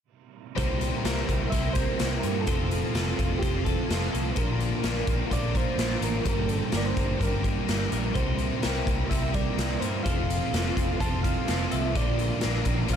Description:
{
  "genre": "rock, shoegaze and dream pop",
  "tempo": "127 BPM",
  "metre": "4/4",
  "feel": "straight",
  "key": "unclear",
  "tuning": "A4 = 439 Hz",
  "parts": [
    { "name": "soft struck synth lead", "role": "melody", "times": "0.6-13.0 s", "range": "G4 to A5", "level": "-35 LUFS", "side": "right 3 dB", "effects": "chorus, analog delay" },
    { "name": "string machine, violins", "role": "sustained chords", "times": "0.6-13.0 s", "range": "Bb3 to D6", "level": "-40 LUFS", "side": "equal", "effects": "none" },
    { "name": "twelve-string electric guitar", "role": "arpeggios", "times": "0.6-13.0 s", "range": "A4 to C5", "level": "-40 LUFS", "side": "left 2 dB", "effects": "wide subtle chorus, analog delay" },
    { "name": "biting overdriven guitar", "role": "riff", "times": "0.6-13.0 s", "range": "F2 to G4", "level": "-33 LUFS", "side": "left 13 dB", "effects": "ensemble chorus" },
    { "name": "overdriven semi-hollow guitar", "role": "riff", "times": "0.6-13.0 s", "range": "G2 to Bb4", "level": "-33 LUFS", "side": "right 12 dB", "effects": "reverse reverb" },
    { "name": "picked electric bass", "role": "bass", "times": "0.6-13.0 s", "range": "F1 to G2", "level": "-30 LUFS", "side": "equal", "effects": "none" },
    { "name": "raw garage drum kit", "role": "drums", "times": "0.6-13.0 s", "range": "hi-hat, kick drum, snare drum", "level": "-28 LUFS", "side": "equal", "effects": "none" }
  ],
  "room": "studio reverb",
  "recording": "none",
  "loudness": "-24 LUFS",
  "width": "side -8 dB against mid",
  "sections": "0.6-13.0 A section",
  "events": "none",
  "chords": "0.6 C7; 2.5 F; 4.4 Bb6; 6.3 Gmadd9; 8.2 C7; 10.1 F; 12.0 Bb6"
}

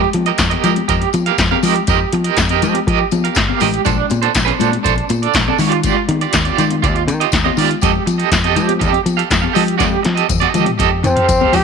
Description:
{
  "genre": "disco",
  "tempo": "121 BPM",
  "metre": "4/4",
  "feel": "straight",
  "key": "unclear",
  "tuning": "A4 = 440 Hz",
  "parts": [
    { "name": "electric guitar at the edge of break-up", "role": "accompaniment", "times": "0.0-11.6 s", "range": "D4 to F5", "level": "-17 LUFS", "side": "right 13 dB", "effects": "tremolo" },
    { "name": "fingered electric bass", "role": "bass", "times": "0.0-11.6 s", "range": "G1 to F3", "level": "-18 LUFS", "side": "left 1 dB", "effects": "none" },
    { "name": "congas", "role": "percussion", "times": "0.0-11.6 s", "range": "none", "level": "-22 LUFS", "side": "left 16 dB", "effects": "none" },
    { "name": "electro analog drum machine", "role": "drums", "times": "0.1-11.6 s", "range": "handclaps, hi-hat, kick drum, snare drum, toms", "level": "-19 LUFS", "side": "left 1 dB", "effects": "none" },
    { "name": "tambourine", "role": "percussion", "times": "0.4-11.6 s", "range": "none", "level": "-28 LUFS", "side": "left 17 dB", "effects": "none" },
    { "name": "brilliant trombone", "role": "melody", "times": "11.1-11.6 s", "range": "C4 to G4", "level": "-13 LUFS", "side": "left 2 dB", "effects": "none" }
  ],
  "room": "light reverb, studio ambience",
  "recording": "1960s-style stereo with parts hard left and right",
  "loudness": "-13 LUFS",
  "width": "side -6 dB against mid",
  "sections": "0.0-11.6 A section",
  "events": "drum fill 9.8-11.6",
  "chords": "0.0 F9sus4; 3.9 Bbmaj9; 5.6 Ebmaj9; 7.8 F9"
}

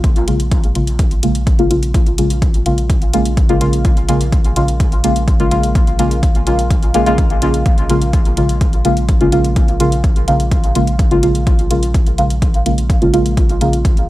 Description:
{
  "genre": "dub techno",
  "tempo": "126 BPM",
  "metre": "4/4",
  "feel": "straight",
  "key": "Bb minor",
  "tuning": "A4 = 440 Hz",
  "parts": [
    { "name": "deep mellow chord stab", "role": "stabs", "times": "0.0-13.7 s", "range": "Db3 to F4", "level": "-16 LUFS", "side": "equal", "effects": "chorus, phaser, vintage 12-bit sampler grit, sidechain pumping, dub echo" },
    { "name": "warm sub bass", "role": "bass", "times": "0.0-14.1 s", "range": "Bb1", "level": "-19 LUFS", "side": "equal", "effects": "sidechain pumping" },
    { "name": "electronic hi-hat", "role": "drums", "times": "0.0-14.1 s", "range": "none", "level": "-27 LUFS", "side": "left 1 dB", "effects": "overdrive, studio reverb" },
    { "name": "electronic kick drum", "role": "drums", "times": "0.0-13.9 s", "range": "none", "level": "-14 LUFS", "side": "equal", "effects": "overdrive, studio reverb" }
  ],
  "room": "light reverb",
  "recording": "dry, gritty hardware recording",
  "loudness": "-12 LUFS",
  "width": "side -16 dB against mid",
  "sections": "0.0-14.1 A section",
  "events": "none",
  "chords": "0.0 Bbm7"
}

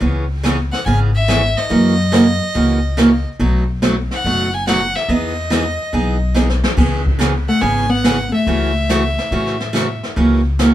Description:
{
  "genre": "country, western swing",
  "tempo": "142 BPM",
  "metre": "4/4",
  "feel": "swing 68% on 8ths",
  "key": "unclear",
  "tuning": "A4 = 440 Hz",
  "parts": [
    { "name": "picked steel-string acoustic guitar", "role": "accompaniment", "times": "0.0-10.7 s", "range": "B2 to G#4", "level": "-16 LUFS", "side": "right 2 dB", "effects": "none" },
    { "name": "upright bass", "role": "bass", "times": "0.0-10.7 s", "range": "F#1 to A2", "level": "-19 LUFS", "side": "left 1 dB", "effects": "none" },
    { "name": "jazz brush drum kit", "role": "drums", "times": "0.0-10.7 s", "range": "brushed snare drum, crash cymbal, hi-hat, kick drum, snare drum", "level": "-22 LUFS", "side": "left 1 dB", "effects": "none" },
    { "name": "clear fiddle", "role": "melody", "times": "0.7-10.0 s", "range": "D#5 to G#5", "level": "-21 LUFS", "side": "equal", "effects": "none" },
    { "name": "hollow-body jazz guitar", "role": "second line", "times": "7.5-10.0 s", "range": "A3 to B3", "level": "-21 LUFS", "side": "left 2 dB", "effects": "none" }
  ],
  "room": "moderate small room reverb, RT60 0.5 s",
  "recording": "band playing live in one room",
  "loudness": "-14 LUFS",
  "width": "side -13 dB against mid",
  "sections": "0.0-10.7 A section",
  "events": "drum fill 6.4-6.8",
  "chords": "0.0 C#m7; 1.7 F#7; 3.4 B7; 5.1 Emaj7; 6.8 C#m7; 8.5 A6/C#; 10.2 F#7/C#"
}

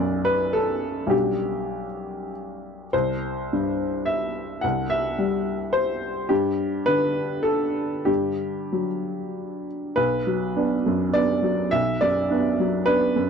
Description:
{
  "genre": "neoclassical minimalist piano",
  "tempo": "93-109 BPM",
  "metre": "3/4",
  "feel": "rubato",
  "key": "G major",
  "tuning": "A4 = 438 Hz",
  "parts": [
    { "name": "clear upright piano", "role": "solo", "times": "0.0-13.3 s", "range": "B1 to F#5", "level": "-22 LUFS", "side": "equal", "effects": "none" }
  ],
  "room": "light reverb",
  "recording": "dry, close 1970s-style studio recording",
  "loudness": "-21 LUFS",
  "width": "side -6 dB against mid",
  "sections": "0.0-10.0 A section; 10.0-13.3 A section",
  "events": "none",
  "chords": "0.0 Gmaj7/B; 2.9 C; 6.3 Gmaj7; 10.0 Bm"
}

